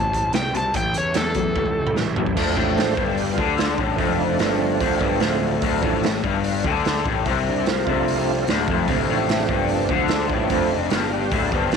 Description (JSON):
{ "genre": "blues rock power trio and southern rock", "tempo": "148 BPM", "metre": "4/4", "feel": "straight", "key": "D minor", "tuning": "A4 = 439 Hz", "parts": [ { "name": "overdriven slide guitar", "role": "melody", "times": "0.0-2.0 s", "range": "A4 to A5", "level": "-23 LUFS", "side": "left 1 dB", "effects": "none" }, { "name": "overdriven tonewheel organ", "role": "sustained chords", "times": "0.0-11.8 s", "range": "C3 to C5", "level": "-25 LUFS", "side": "right 11 dB", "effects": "slow rotary speaker, chorus vibrato" }, { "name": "raw garage guitar", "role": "riff", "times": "0.0-11.8 s", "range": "D2 to F#3", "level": "-23 LUFS", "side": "left 12 dB", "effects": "overdrive" }, { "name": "fuzz picked electric bass", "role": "bass", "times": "0.0-11.8 s", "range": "D1 to E2", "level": "-27 LUFS", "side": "equal", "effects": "overdrive" }, { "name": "raw garage drum kit", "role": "drums", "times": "0.1-11.8 s", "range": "crash cymbal, hi-hat, kick drum, snare drum, toms", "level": "-25 LUFS", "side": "right 4 dB", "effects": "none" } ], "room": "moderate spring reverb, RT60 1.4 s, small room ambience", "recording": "1960s-style stereo with parts hard left and right", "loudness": "-19 LUFS", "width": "side -6 dB against mid", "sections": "0.0-2.4 A section; 2.4-11.8 B section", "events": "drum fill 1.6-2.4; tonewheel organ solo 2.4-11.8", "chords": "0.0 Dm7; 0.7 A7; 2.4 Dm" }